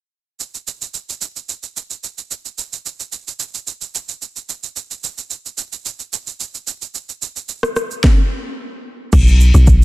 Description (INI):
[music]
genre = amapiano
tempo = 110 BPM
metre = 4/4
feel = straight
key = unclear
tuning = A4 = 440 Hz
[part]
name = afro-pop drum kit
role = drums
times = 0.4-9.8 s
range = crash cymbal, kick drum, rim click, shaker, snare drum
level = -18 LUFS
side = equal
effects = none
[part]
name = deep log drum bass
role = bass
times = 9.1-9.8 s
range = B1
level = -8 LUFS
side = equal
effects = none
[sound]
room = little or no reverb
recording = dense, heavily limited modern master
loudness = -17 LUFS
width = side -19 dB against mid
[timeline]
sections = 0.4-9.1 A section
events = none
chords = none